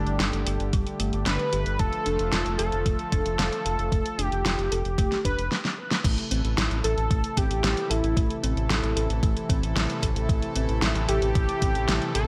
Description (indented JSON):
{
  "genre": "synthwave",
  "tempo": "113 BPM",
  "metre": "4/4",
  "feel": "straight",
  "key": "A minor",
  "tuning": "A4 = 440 Hz",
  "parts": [
    { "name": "unison lead", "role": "melody", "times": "0.0-12.3 s", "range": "D4 to B4", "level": "-32 LUFS", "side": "equal", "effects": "lush chorus, digital delay" },
    { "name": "brassy analog pad", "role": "sustained chords", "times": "0.0-12.3 s", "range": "C3 to A4", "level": "-35 LUFS", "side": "equal", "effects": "chorus, sidechain pumping" },
    { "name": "thumb-piano-like synth pluck", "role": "arpeggios", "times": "0.0-12.3 s", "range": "G3 to A4", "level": "-38 LUFS", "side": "equal", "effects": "chorus, delay" },
    { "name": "round analog bass", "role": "bass", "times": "0.0-12.3 s", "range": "F1 to A1", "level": "-30 LUFS", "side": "equal", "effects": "none" },
    { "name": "pop drum kit", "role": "drums", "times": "0.1-12.3 s", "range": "crash cymbal, hi-hat, snare drum", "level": "-31 LUFS", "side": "equal", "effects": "small room reverb, gated reverb" },
    { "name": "electronic kick drum", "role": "drums", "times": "0.7-11.7 s", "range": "none", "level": "-28 LUFS", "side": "equal", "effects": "overdrive, small room reverb" }
  ],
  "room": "light reverb, digital ambience",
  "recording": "none",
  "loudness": "-25 LUFS",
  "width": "mono",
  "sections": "0.0-6.0 A section; 6.0-12.3 B section",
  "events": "drum fill 5.5-6.0",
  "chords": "0.0 Gsus2; 1.8 Dm/F; 6.0 Am"
}